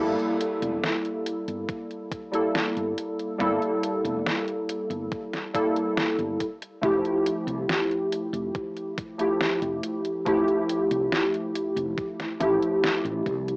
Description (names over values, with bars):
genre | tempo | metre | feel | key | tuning
vaporwave | 70 BPM | 4/4 | straight | G dorian | A4 = 440 Hz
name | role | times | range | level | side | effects
warbly lo-fi synth keys | accompaniment | 0.0-13.6 s | F3 to A4 | -25 LUFS | equal | analog chorus, cassette tape, analog delay
woody fretless electric bass | bass | 0.0-13.6 s | E1 to C2 | -33 LUFS | equal | none
detuned 8-bit digital drum machine | drums | 0.2-13.6 s | hi-hat, snare drum | -29 LUFS | equal | overdrive, vintage 12-bit sampler grit, studio reverb, cassette tape
electronic kick drum | drums | 1.7-13.4 s | none | -34 LUFS | equal | overdrive, vintage 12-bit sampler grit, studio reverb, cassette tape
room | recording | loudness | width
moderate booth ambience, RT60 0.2 s | home recording on cassette, small speaker sound | -24 LUFS | side -28 dB against mid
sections
0.0-13.6 A section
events
none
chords
0.0 Gm69; 6.4 Fmaj9